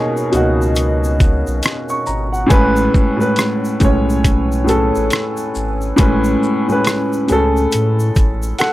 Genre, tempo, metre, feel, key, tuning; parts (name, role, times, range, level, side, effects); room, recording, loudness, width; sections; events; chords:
lo-fi hip hop; 69 BPM; 4/4; swing 62% on 16ths; A major; A4 = 440 Hz
dark upright piano; accompaniment; 0.0-8.7 s; A2 to C#6; -16 LUFS; equal; cassette tape, low-pass filter
mellow hollow large flute ensemble; sustained chords; 0.0-8.7 s; C#4 to G#5; -26 LUFS; equal; low-pass filter
tube shaker; percussion; 0.2-8.7 s; -36 LUFS; left 2 dB
warm sub bass; bass; 0.3-8.5 s; G#1 to A2; -19 LUFS; equal
boom bap sampler-style drum kit; drums; 0.3-8.7 s; hi-hat, kick drum, rim click, shaker; -15 LUFS; equal
light reverb; dry, gritty hardware recording; -13 LUFS; side -16 dB against mid
0.0-8.7 A section
0.0 Bmaj9; 2.5 Amaj9